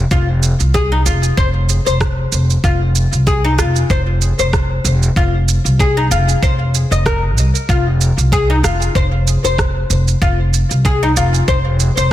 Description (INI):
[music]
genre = organic downtempo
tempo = 95 BPM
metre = 4/4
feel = swing 55% on 16ths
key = F minor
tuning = A4 = 438 Hz
[part]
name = upright bass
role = bass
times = 0.0-12.1 s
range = F1 to C2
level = -14 LUFS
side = equal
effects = none
[part]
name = oud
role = arpeggios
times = 0.1-12.1 s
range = Eb4 to Eb5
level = -19 LUFS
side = left 3 dB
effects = digital delay
[part]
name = electronic kick drum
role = drums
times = 0.1-11.6 s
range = none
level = -17 LUFS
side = equal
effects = studio reverb
[part]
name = electronic shaker and rim click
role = drums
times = 0.1-12.1 s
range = none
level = -22 LUFS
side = right 5 dB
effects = overdrive, studio reverb
[sound]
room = light reverb, small room ambience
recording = dense, heavily limited modern master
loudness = -12 LUFS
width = side -13 dB against mid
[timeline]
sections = 0.0-12.1 A section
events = none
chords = 0.0 F5